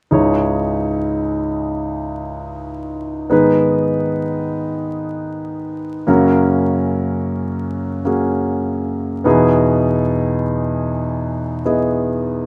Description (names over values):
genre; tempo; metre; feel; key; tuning
pop; 76 BPM; 4/4; straight; unclear; A4 = 440 Hz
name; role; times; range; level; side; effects
clear concert grand piano; accompaniment; 0.1-12.5 s; C#2 to D#5; -18 LUFS; equal; none
room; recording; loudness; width
moderate studio reverb, RT60 0.6 s; rough home demo mix, vinyl crackle; -18 LUFS; mono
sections
0.1-12.5 A section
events
none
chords
0.1 C#madd9; 3.3 G#m; 6.1 F#; 9.2 Emaj7